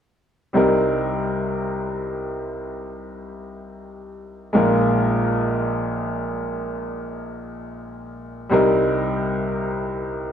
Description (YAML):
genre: acoustic folk-pop ballad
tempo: free time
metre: none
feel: none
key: C minor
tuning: A4 = 441 Hz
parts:
  - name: bright baby grand piano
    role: solo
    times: 0.5-10.3 s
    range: Bb1 to Bb4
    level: -21 LUFS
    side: equal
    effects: slapback echo
room: wet studio reverb, RT60 0.9 s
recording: heard from further back in the room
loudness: -20 LUFS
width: side -8 dB against mid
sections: 0.6-10.3 A section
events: none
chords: 0.6 Cm7; 4.6 Bb7sus4; 8.5 Cm7